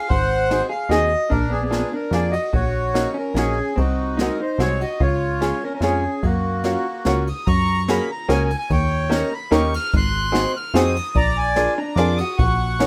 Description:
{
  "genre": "musette waltz",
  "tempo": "146 BPM",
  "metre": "3/4",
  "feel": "straight",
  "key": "F# major",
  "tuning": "A4 = 441 Hz",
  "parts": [
    { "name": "accordion", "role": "melody", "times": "0.0-12.9 s", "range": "A#3 to F#6", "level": "-25 LUFS", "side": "equal", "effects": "none" },
    { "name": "vintage hollow-body jazz guitar", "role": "second line", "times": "0.0-7.2, 11.8-12.9 s", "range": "A#3 to B#4", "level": "-31 LUFS", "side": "equal", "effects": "none" },
    { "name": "plucky analog bass", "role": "bass", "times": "0.1-12.9 s", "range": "G#1 to F#2", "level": "-25 LUFS", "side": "equal", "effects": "none" },
    { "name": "jazz brush drum kit", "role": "drums", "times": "0.1-12.9 s", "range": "kick drum, ride cymbal, snare drum", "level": "-28 LUFS", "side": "equal", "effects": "none" },
    { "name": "open-back banjo", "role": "accompaniment", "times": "0.5-12.9 s", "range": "G#3 to D5", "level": "-24 LUFS", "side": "equal", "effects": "none" }
  ],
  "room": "light reverb",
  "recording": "rough home demo mix",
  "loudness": "-20 LUFS",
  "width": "mono",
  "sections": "0.0-7.5 A section; 7.5-12.9 A section",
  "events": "none",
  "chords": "0.1 G#7; 1.3 A#7; 2.5 D#m7/A#; 3.8 G#7/B#; 5.0 C#; 6.2 F#maj7; 7.5 F#add9; 8.7 D#7; 9.9 G#7; 11.1 A#7",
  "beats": "| 0.09 0.49 0.90 | 1.30 1.71 2.12 | 2.53 2.95 3.36 | 3.77 4.18 4.59 | 5.00 5.40 5.81 | 6.22 6.63 7.05 | 7.46 7.88 8.29 | 8.70 9.11 9.52 | 9.93 10.34 10.74 | 11.15 11.56 11.97 | 12.38 12.80"
}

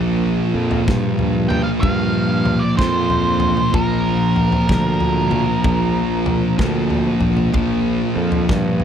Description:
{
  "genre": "stoner and doom metal",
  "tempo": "63 BPM",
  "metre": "4/4",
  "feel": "swing 65% on 8ths",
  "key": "unclear",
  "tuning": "A4 = 439 Hz",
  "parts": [
    { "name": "string machine, cellos", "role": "sustained chords", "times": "0.0-8.8 s", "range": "Bb3 to C5", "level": "-30 LUFS", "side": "equal", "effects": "none" },
    { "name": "thick fuzz guitar", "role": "riff", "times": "0.0-8.8 s", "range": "Bb2 to Bb3", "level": "-21 LUFS", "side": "left 9 dB", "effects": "distortion" },
    { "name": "thick fuzz guitar", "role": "riff", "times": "0.0-8.8 s", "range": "Bb2 to Bb3", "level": "-21 LUFS", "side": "right 10 dB", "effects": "distortion" },
    { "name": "fuzz fingered electric bass", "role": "bass", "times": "0.0-8.8 s", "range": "Bb1 to G2", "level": "-22 LUFS", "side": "equal", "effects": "overdrive" },
    { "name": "big rock drum kit", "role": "drums", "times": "0.7-8.8 s", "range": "kick drum, snare drum, toms", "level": "-23 LUFS", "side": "left 1 dB", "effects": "none" },
    { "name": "octave-fuzz lead guitar", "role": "melody", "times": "1.5-6.6 s", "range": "Bb4 to G5", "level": "-23 LUFS", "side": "right 2 dB", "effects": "distortion" }
  ],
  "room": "little or no reverb",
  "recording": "dry, close 1970s-style studio recording",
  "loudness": "-15 LUFS",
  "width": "side -8 dB against mid",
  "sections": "0.0-8.8 A section",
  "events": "none",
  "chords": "0.0 Bb",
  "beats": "0.88 1.83 2.78 | 3.73 4.68 5.64 6.59 | 7.54 8.49"
}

